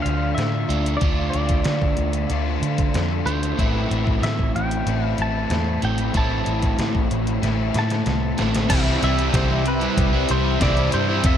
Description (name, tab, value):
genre	rock, shoegaze and dream pop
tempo	94 BPM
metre	4/4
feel	straight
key	unclear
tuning	A4 = 439 Hz
part	twangy electric guitar	melody	0.0-11.4 s	B4 to A5	-28 LUFS	equal	wide subtle chorus, tape echo
part	crunchy overdriven guitar	riff	0.0-11.4 s	F2 to F4	-26 LUFS	right 8 dB	reverse reverb
part	overdriven electric guitar	riff	0.0-11.4 s	F2 to F4	-26 LUFS	left 8 dB	ensemble chorus
part	vintage muted picked electric bass	bass	0.1-11.4 s	F1 to D3	-24 LUFS	equal	none
part	detuned 8-bit digital drum machine	drums	0.1-11.4 s	crash cymbal, hi-hat, kick drum, snare drum	-24 LUFS	equal	none
part	distorted electric guitar	riff	8.7-11.4 s	F2 to C4	-27 LUFS	equal	overdrive
room	moderate lush hall reverb, RT60 2.4 s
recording	dreamy mix soaked in reverb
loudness	-19 LUFS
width	side -9 dB against mid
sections	0.0-8.7 A section; 8.7-11.4 B section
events	drum fill 7.4-8.7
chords	0.0 Dm; 3.6 Am; 8.7 Cmaj7